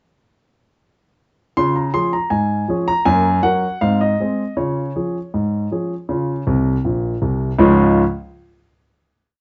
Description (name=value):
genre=ragtime piano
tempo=80 BPM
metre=2/4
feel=straight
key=Db major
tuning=A4 = 440 Hz
part: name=warm grand piano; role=solo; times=1.6-8.0 s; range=Bb1 to C6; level=-18 LUFS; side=equal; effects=none
room=light reverb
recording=dark, warm production, nothing above 7.8 kHz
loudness=-18 LUFS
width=mono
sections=1.6-7.6 A section; 7.6-9.1 final chord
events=grand piano fill 6.5-7.6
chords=1.6 Db; 3.1 Gb; 3.8 Ab; 4.6 Db